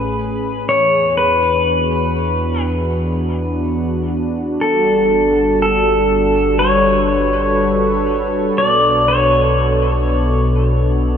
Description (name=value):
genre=ambient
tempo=61 BPM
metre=4/4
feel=straight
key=unclear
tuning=A4 = 440 Hz
part: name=pedal steel guitar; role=melody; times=0.0-10.5 s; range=A4 to D5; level=-16 LUFS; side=equal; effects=tape echo
part: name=warm analog pad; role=sustained chords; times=0.0-11.2 s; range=A2 to B4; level=-18 LUFS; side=equal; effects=chorus
part: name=warm sub bass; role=bass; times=0.0-11.2 s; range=G1 to E2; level=-22 LUFS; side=equal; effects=none
room=wet cathedral reverb, RT60 5.0 s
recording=none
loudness=-13 LUFS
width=side -8 dB against mid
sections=0.0-11.2 A section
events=fade-in on analog synth pad 0.0-11.2; fade-in on sub bass 0.0-11.2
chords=0.0 Amaj7; 0.7 E7; 4.6 Gmaj9; 8.6 Bm7